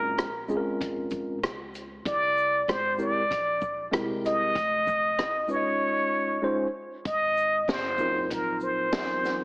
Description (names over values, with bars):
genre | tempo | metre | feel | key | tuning
hip hop, jazz-hop | 96 BPM | 4/4 | swing 59% on 16ths | unclear | A4 = 440 Hz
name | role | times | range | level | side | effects
trumpet with plunger mute | melody | 0.0-9.4 s | Bb4 to Eb5 | -25 LUFS | equal | slapback echo
mellow tine electric piano | accompaniment | 0.0-9.4 s | Gb3 to Eb5 | -30 LUFS | equal | fast stereo tremolo
upright bass | bass | 0.0-9.4 s | F1 to Fb2 | -42 LUFS | equal | none
open jazz drum kit | drums | 0.2-9.4 s | hi-hat, kick drum, rim click, shaker, snare drum | -32 LUFS | equal | none
room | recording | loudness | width
light reverb, small room ambience | heavily compressed radio sound, multiband compression, AM radio sound | -24 LUFS | side -30 dB against mid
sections
0.0-7.1 A section; 7.1-9.4 B section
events
none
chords
0.0 Gbmaj9#11 (rootless); 2.1 C7b13; 4.6 Fm7; 5.8 Dbmaj9; 7.1 Ab13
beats
0.18 0.80 1.43 | 2.05 2.68 3.30 3.93 | 4.55 5.18 5.80 6.43 | 7.05 7.68 8.30 8.93